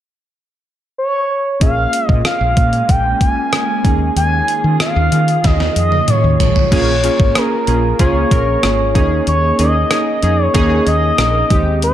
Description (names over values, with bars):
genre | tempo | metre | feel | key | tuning
1980s-style pop | 94 BPM | 4/4 | straight | unclear | A4 = 440 Hz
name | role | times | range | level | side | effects
expressive synth lead | melody | 1.0-11.9 s | Bb4 to Ab5 | -17 LUFS | equal | chorus
warm analog keys | accompaniment | 1.6-11.9 s | Ab3 to Bb4 | -20 LUFS | right 1 dB | chorus
glassy FM pad | sustained chords | 1.9-6.7 s | Eb3 to Ab4 | -23 LUFS | equal | ensemble chorus, built-in reverb
woody fretless electric bass | bass | 1.6-11.9 s | Ab1 to Eb3 | -17 LUFS | equal | none
gated 80s digital drum machine | drums | 1.6-11.9 s | crash cymbal, hi-hat, kick drum, rim click, snare drum, toms | -16 LUFS | equal | gated reverb, gated reverb snare, overdrive
room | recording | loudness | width
light reverb, digital ambience | dark, warm production | -12 LUFS | side -11 dB against mid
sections
0.0-1.6 A section; 1.6-6.7 B section; 6.7-11.9 C section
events
drum fill 5.4-6.7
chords
0.0 N.C.; 1.6 Bbm7; 3.8 Eb7sus4; 6.4 Bbm7; 9.0 Eb7sus4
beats
0.34 0.97 | 1.61 2.25 2.89 3.53 | 4.17 4.80 5.44 6.08 | 6.72 7.36 8.00 8.63 | 9.27 9.91 10.55 11.19 | 11.82